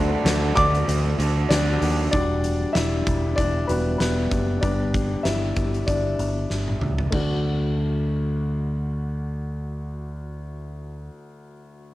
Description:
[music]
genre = piano-driven pop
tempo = 96 BPM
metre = 4/4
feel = swing 56% on 16ths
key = D major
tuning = A4 = 439 Hz
[part]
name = warm concert grand piano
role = accompaniment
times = 0.0-11.9 s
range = D2 to D6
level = -26 LUFS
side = left 2 dB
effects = cassette tape
[part]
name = crunchy overdriven guitar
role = riff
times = 0.0-2.1 s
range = D3 to A4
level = -28 LUFS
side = right 6 dB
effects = cassette tape
[part]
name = picked electric bass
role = bass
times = 0.0-11.1 s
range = E1 to Eb2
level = -25 LUFS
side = equal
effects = none
[part]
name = huge arena drum kit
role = drums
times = 0.3-7.3 s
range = crash cymbal, hi-hat, kick drum, snare drum, toms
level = -27 LUFS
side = equal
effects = cassette tape
[sound]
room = light reverb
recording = home recording on cassette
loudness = -21 LUFS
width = side -16 dB against mid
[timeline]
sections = 0.0-2.1 A section; 2.1-7.1 B section; 7.1-9.6 C section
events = grand piano solo 0.0-2.1, 2.1-7.1; drum fill 6.5-7.1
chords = 0.0 D; 2.1 Em7; 4.6 G; 7.1 D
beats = 0.25 0.88 1.50 | 2.13 2.75 3.38 4.00 | 4.63 5.25 5.88 6.50 | 7.13 7.75 8.38 9.00

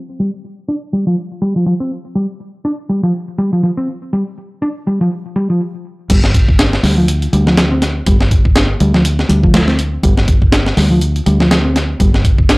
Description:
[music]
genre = breakbeat, breaks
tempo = 122 BPM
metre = 4/4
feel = swing 57% on 16ths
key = unclear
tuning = A4 = 441 Hz
[part]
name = hollow-body short-scale picked electric bass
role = riff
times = 0.2-12.5 s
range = F3 to D4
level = -16 LUFS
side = equal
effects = tube saturation, vintage 12-bit sampler grit, low-pass filter
[part]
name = fingered electric bass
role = bass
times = 6.1-12.6 s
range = G1 to D2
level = -15 LUFS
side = equal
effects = tube saturation
[part]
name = breakbeat sampler-style drum kit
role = drums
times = 6.1-12.6 s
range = crash cymbal, hi-hat, kick drum, snare drum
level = -13 LUFS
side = equal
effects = studio reverb
[sound]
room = digital ambience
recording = dry, gritty hardware recording, cassette tape, low-pass filter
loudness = -12 LUFS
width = side -25 dB against mid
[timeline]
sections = 0.0-6.1 A section; 6.1-12.6 B section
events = filter sweep on picked electric bass 0.0-6.1; filter sweep 0.0-6.1; stop 5.6-6.1; drop 6.1-12.6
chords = 0.0 G5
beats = | 0.20 0.69 1.18 1.67 | 2.16 2.65 3.15 3.64 | 4.13 4.62 5.11 5.60 | 6.10 6.59 7.08 7.57 | 8.06 8.55 9.05 9.54 | 10.03 10.52 11.01 11.51 | 12.00 12.49

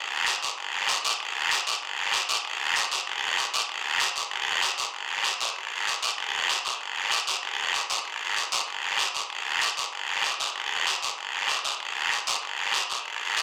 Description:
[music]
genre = latin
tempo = 192 BPM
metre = 4/4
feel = straight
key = none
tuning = none
[part]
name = guiro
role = percussion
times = 0.3-13.4 s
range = none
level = -27 LUFS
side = equal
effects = none
[sound]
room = light reverb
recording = close, detailed microphones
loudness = -27 LUFS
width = mono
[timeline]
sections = 0.0-4.9 A section; 4.9-13.4 B section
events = none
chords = none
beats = 0.27 0.58 0.89 | 1.20 1.51 1.82 2.13 | 2.45 2.76 3.07 3.38 | 3.69 4.00 4.31 4.62 | 4.94 5.25 5.56 5.87 | 6.18 6.50 6.81 7.12 | 7.43 7.75 8.06 8.37 | 8.68 8.99 9.31 9.62 | 9.93 10.24 10.55 10.87 | 11.18 11.49 11.80 12.12 | 12.43 12.74 13.05 13.37

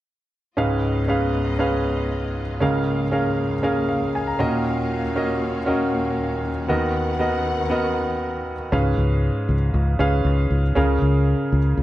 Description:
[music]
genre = pop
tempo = 118 BPM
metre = 4/4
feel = straight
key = Db mixolydian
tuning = A4 = 440 Hz
[part]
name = clear baby grand piano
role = accompaniment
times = 0.6-11.8 s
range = Db2 to Bb5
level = -21 LUFS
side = right 1 dB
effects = none
[part]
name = warm studio string section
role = sustained chords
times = 0.6-8.7 s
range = Db2 to Gb5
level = -29 LUFS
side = left 2 dB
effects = none
[part]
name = fingered electric bass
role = bass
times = 8.7-11.8 s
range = Db2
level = -19 LUFS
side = equal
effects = none
[sound]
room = moderate studio reverb, RT60 0.7 s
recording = dark, warm production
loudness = -19 LUFS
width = side -14 dB against mid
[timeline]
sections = 0.6-8.7 A section; 8.7-11.8 B section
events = grand piano fill 3.6-4.7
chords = 0.6 Db7; 2.6 Bbm7/Db; 4.4 Ebm7; 6.7 Cbmaj7/Eb; 8.7 Db7; 10.8 Bbm7/Db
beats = | 0.58 1.09 1.60 2.11 | 2.62 3.13 3.64 4.15 | 4.66 5.16 5.67 6.18 | 6.69 7.20 7.71 8.22 | 8.72 9.23 9.74 10.25 | 10.76 11.27 11.78

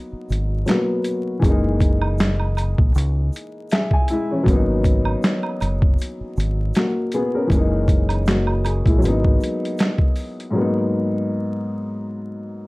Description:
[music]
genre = lo-fi hip hop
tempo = 79 BPM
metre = 4/4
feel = swing 55% on 16ths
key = G# minor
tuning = A4 = 439 Hz
[part]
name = dark upright piano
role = accompaniment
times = 0.0-12.7 s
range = G#2 to G#5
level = -22 LUFS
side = left 1 dB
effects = cassette tape, low-pass filter
[part]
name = deep dub fingered electric bass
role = bass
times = 0.1-9.4 s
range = F#1 to C#2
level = -21 LUFS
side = equal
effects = none
[part]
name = boom bap sampler-style drum kit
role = drums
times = 0.3-10.5 s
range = handclaps, hi-hat, kick drum, snare drum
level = -18 LUFS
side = equal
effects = none
[part]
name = egg shaker and woodblock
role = percussion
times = 0.3-10.4 s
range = none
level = -31 LUFS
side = right 5 dB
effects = none
[sound]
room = moderate studio reverb, RT60 0.6 s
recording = dark, warm production, vinyl crackle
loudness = -18 LUFS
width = side -22 dB against mid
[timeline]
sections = 0.0-10.5 A section; 10.5-12.7 B section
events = upright piano fill 3.3-4.5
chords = 0.0 G#m9; 1.4 F#13; 4.5 G#m9; 7.5 F#13; 9.0 G#m9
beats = 0.67 | 1.43 2.19 2.95 3.71 | 4.47 5.23 5.99 6.75 | 7.51 8.27 9.03 9.78 | 10.54 11.30 12.06

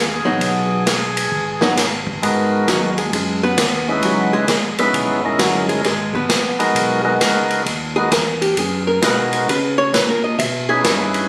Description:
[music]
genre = soul jazz organ trio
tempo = 132 BPM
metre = 4/4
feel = swing 66% on 8ths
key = G# minor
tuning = A4 = 440 Hz
[part]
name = percussive tonewheel organ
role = melody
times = 0.0-11.3 s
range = G#3 to B4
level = -21 LUFS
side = equal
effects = slow rotary speaker
[part]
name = tonewheel organ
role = bass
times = 0.0-11.3 s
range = E1 to C#3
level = -28 LUFS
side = equal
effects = overdrive
[part]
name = archtop guitar, miked and amplified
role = accompaniment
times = 0.2-10.8 s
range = F#3 to E5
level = -22 LUFS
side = equal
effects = none
[part]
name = swinging big-band drum kit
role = drums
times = 0.4-11.2 s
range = hi-hat, kick drum, ride cymbal, snare drum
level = -22 LUFS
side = equal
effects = none
[sound]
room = light reverb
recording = recorded on a phone in the room, studio reverb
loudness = -18 LUFS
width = mono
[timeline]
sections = 0.0-2.2 A section; 2.2-11.3 B section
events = hollow-body jazz guitar solo 2.2-11.3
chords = 0.0 G#m7; 4.0 C#m7; 5.8 G#m7; 9.5 C#m7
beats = | 0.42 0.87 1.32 1.77 | 2.22 2.67 3.13 3.58 | 4.03 4.48 4.93 5.39 | 5.84 6.29 6.75 7.20 | 7.66 8.11 8.56 9.02 | 9.48 9.93 10.39 10.84

